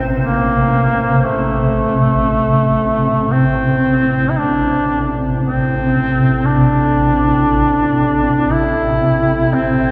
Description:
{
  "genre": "dark ambient drone",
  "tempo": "free time",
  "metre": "none",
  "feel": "none",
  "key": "A phrygian",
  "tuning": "A4 = 439 Hz",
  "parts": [
    { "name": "clear duduk", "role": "melody", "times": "0.0-9.9 s", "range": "A3 to E4", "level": "-18 LUFS", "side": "equal", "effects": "analog delay" },
    { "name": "swarming drone", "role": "drone", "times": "0.0-9.9 s", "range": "A1 to C3", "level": "-18 LUFS", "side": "equal", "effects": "built-in reverb" },
    { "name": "icy glass pad", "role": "texture", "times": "0.0-1.3 s", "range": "C5", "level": "-31 LUFS", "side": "equal", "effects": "chorus, built-in reverb" },
    { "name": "dark analog pad", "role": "sustained chords", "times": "2.9-9.9 s", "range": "E4 to G5", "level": "-31 LUFS", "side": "equal", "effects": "chorus" }
  ],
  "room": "wet plate reverb, RT60 3.1 s",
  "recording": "echo-heavy mix",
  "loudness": "-15 LUFS",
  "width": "mono",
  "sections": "0.0-1.2 A section; 1.2-9.9 B section",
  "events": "fade-in on analog synth pad 1.2-9.9",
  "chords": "0.0 Am; 1.2 Am7"
}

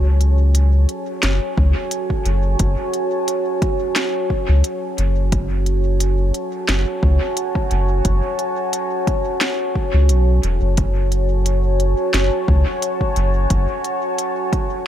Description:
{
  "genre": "ambient dub",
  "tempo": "88 BPM",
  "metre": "4/4",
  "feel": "swing 54% on 16ths",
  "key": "F# minor",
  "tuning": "A4 = 440 Hz",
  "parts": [
    { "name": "deep dark ambient pad", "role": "sustained chords", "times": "0.0-14.9 s", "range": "F#4 to A5", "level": "-22 LUFS", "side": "equal", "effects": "chorus, built-in reverb" },
    { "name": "soft dub sub bass", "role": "bass", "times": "0.0-13.7 s", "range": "E1 to C#2", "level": "-16 LUFS", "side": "equal", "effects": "none" },
    { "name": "organic electronic drum kit", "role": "drums", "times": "0.2-14.7 s", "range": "hi-hat, snare drum", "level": "-24 LUFS", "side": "equal", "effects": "dub echo" },
    { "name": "electronic kick drum", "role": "drums", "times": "1.6-14.7 s", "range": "none", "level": "-21 LUFS", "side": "equal", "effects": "overdrive" }
  ],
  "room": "light reverb",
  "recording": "none",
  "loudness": "-16 LUFS",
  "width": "side -11 dB against mid",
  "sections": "0.0-14.9 A section",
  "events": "none",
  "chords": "0.0 F#m"
}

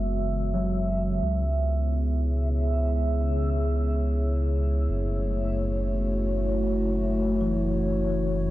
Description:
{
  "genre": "future garage",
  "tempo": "free time",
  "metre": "none",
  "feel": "none",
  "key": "unclear",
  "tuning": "A4 = 440 Hz",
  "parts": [
    { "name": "bell-like tine electric piano", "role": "accompaniment", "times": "0.0-1.4, 7.4-8.5 s", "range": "E3 to B3", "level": "-31 LUFS", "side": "left 2 dB", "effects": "fast stereo tremolo, vintage 12-bit sampler grit, analog delay" },
    { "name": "dark analog pad", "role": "sustained chords", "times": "0.0-8.5 s", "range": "E3 to C#5", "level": "-29 LUFS", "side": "equal", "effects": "chorus" },
    { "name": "dark detuned saw bass", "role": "bass", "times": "0.0-8.5 s", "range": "F#1 to C#2", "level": "-26 LUFS", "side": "equal", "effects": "transformer saturation" },
    { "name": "backwards swelling texture", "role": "texture", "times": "0.0-8.5 s", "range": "E5", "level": "-35 LUFS", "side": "right 4 dB", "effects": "built-in reverb" }
  ],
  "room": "digital ambience",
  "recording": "dry, gritty hardware recording, low-pass filter",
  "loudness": "-23 LUFS",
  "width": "side -16 dB against mid",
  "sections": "0.0-8.5 A section",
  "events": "filter sweep on analog synth pad 0.0-8.5; filter sweep 0.0-8.5",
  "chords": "0.0 F#5; 1.2 C#m7; 4.9 F#m7"
}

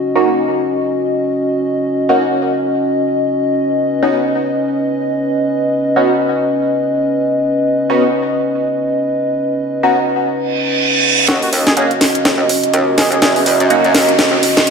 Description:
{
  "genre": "bass house",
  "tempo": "124 BPM",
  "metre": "4/4",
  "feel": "swing 58% on 16ths",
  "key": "Eb minor",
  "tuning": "A4 = 440 Hz",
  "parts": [
    { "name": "dark analog pad", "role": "sustained chords", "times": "0.0-14.7 s", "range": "Db4 to Eb5", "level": "-15 LUFS", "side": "equal", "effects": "chorus" },
    { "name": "band-passed chord stab", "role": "stabs", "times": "0.2-13.8 s", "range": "Bb3 to Gb4", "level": "-17 LUFS", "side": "equal", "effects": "phaser, lush chorus, vintage 12-bit sampler grit, ping-pong delay" },
    { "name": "reverse cymbal and riser", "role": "sound effects", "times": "10.5-14.7 s", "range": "none", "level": "-18 LUFS", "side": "right 3 dB", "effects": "none" },
    { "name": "trumpet with plunger mute", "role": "melody", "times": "11.3-13.4 s", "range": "Gb4 to Ab4", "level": "-22 LUFS", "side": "left 1 dB", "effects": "ping-pong delay" },
    { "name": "metallic wobble bass", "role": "bass", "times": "11.3-14.4 s", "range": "Eb2 to Gb2", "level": "-17 LUFS", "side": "equal", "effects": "chorus, overdrive, high-pass filter" },
    { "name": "house drum kit", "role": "drums", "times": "11.3-14.7 s", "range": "hi-hat, snare drum", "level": "-15 LUFS", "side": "equal", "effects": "overdrive" }
  ],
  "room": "wet lush hall reverb, RT60 2.1 s",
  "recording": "dreamy mix soaked in reverb",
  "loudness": "-12 LUFS",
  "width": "side -5 dB against mid",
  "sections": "0.0-11.3 A section; 11.3-14.7 B section",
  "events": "reverse cymbal 10.5-11.3; build-up 11.3-14.7; drum fill 11.3-14.7; riser 11.3-14.7",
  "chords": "0.0 Ebm7; 3.5 Badd9; 11.3 Ebm7"
}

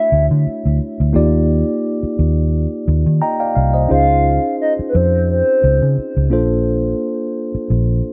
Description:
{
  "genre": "R&B",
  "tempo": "87 BPM",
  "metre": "4/4",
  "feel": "swing 54% on 16ths",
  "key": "unclear",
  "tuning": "A4 = 440 Hz",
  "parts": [
    { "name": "hollow clarinet-like synth lead", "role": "melody", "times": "0.0-6.3 s", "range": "B4 to E#5", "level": "-19 LUFS", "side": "equal", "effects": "chorus, tape echo" },
    { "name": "mellow tine electric piano", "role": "accompaniment", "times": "0.0-8.1 s", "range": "A3 to Bb5", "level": "-22 LUFS", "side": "equal", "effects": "none" },
    { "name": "vintage muted fingered electric bass", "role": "bass", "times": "0.1-8.0 s", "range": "Bb1 to Eb3", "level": "-18 LUFS", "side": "equal", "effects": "none" }
  ],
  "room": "little or no reverb",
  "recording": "none",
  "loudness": "-16 LUFS",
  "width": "mono",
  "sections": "0.0-8.1 A section",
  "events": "tine electric piano fill 2.9-3.9",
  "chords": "0.0 Dmaj9; 1.1 Ebmaj9; 3.9 C#maj9; 6.3 Bbmaj9"
}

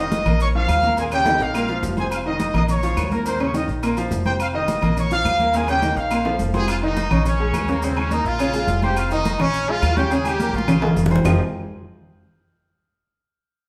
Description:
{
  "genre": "latin, salsa",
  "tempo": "210 BPM",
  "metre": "4/4",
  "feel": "straight",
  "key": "unclear",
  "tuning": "A4 = 440 Hz",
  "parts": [
    { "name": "bright trumpet section", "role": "melody", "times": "0.0-11.0 s", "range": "Bb3 to Eb6", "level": "-25 LUFS", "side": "equal", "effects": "none" },
    { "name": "bright concert grand piano", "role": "accompaniment", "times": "0.0-11.4 s", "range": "Bb2 to Db6", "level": "-27 LUFS", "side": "equal", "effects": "none" },
    { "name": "upright bass", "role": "bass", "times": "0.0-11.4 s", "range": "F1 to Eb2", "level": "-27 LUFS", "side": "equal", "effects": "none" },
    { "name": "congas", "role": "percussion", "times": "0.1-11.3 s", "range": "none", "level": "-27 LUFS", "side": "equal", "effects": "none" },
    { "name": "maracas", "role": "percussion", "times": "0.1-11.3 s", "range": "none", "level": "-43 LUFS", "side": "equal", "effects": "none" },
    { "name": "timbales and agogo bells", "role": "percussion", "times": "0.1-11.3 s", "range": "none", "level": "-32 LUFS", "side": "equal", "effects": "none" },
    { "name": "claves", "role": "percussion", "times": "0.3-11.3 s", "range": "none", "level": "-37 LUFS", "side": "equal", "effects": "none" }
  ],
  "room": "wet large studio reverb, RT60 1.3 s",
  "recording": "band playing live in one room",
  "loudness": "-20 LUFS",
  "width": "mono",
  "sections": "0.0-6.7 A section; 6.7-11.2 B section; 11.2-12.4 C section",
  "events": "drum fill 1.3-2.1, 6.3-6.7, 10.4-11.2",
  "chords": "0.4 Bb5; 1.0 Eb7(no3); 1.5 Bb5; 2.1 F5; 2.7 Bbm; 3.3 Eb5; 3.8 Bb5; 4.4 F5; 5.0 Bbm; 5.5 Eb7sus4; 6.1 Bb5; 6.7 Bbmadd11/F; 7.3 Bbm7; 9.0 F5; 9.5 Bbm7; 11.2 Fm9"
}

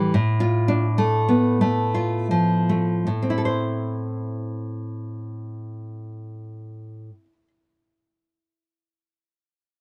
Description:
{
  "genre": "romantic piece for solo classical guitar",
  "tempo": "50-76 BPM",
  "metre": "3/4",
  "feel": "rubato",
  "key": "A minor",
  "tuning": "A4 = 440 Hz",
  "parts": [
    { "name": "nylon-string guitar", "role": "solo", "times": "0.0-7.5 s", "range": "A2 to C5", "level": "-24 LUFS", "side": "equal", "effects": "none" }
  ],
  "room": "light reverb",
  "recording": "dry, close 1970s-style studio recording",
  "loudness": "-22 LUFS",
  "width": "mono",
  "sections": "0.0-3.1 A section; 3.1-9.4 B section",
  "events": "slowing down 0.0-3.1",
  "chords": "0.1 Dm/A; 3.1 Am"
}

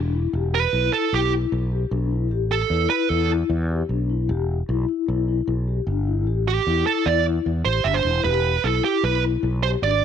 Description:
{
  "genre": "progressive instrumental, band music in an uneven meter",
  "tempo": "152 BPM",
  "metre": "5/4",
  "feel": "straight",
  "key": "unclear",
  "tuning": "A4 = 439 Hz",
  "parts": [
    { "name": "vibraphone with soft mallets", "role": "arpeggios", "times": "0.0-9.9 s", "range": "D4 to G4", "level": "-26 LUFS", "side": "left 12 dB", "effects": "none" },
    { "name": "fretless electric bass", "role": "bass", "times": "0.0-10.0 s", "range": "E1 to E2", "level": "-23 LUFS", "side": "equal", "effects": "none" },
    { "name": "fuzz lead guitar", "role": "melody", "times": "0.5-3.3, 6.5-10.0 s", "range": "G4 to E5", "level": "-22 LUFS", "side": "right 11 dB", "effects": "distortion" }
  ],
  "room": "small room ambience",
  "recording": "1960s-style stereo with parts hard left and right",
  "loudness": "-19 LUFS",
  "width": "side -8 dB against mid",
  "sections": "0.3-10.0 A section",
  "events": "lead electric guitar solo 0.3-10.0",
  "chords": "0.3 Em; 2.3 A5; 4.3 Em; 6.3 A5; 8.2 Em"
}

